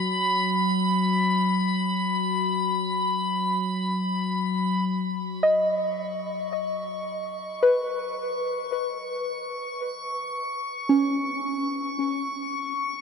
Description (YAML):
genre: ambient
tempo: free time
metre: none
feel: none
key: unclear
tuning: A4 = 441 Hz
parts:
  - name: analog drone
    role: drone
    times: 0.0-5.0 s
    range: F#3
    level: -27 LUFS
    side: left 1 dB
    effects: chorus
  - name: drifting glass-harmonics texture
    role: texture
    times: 0.0-13.0 s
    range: B5 to C#6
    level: -28 LUFS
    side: left 1 dB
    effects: chorus, built-in reverb
  - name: soft round pluck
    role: arpeggios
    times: 5.4-13.0 s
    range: C#4 to D#5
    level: -25 LUFS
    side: equal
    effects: chorus, ping-pong delay
room: wet huge ambient reverb, RT60 7.7 s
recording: none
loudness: -24 LUFS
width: side -6 dB against mid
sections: 0.0-4.9 A section; 4.9-13.0 A section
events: fade-in on synth texture 4.9-13.0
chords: 0.0 B5/F#; 4.9 G#madd11 (rootless)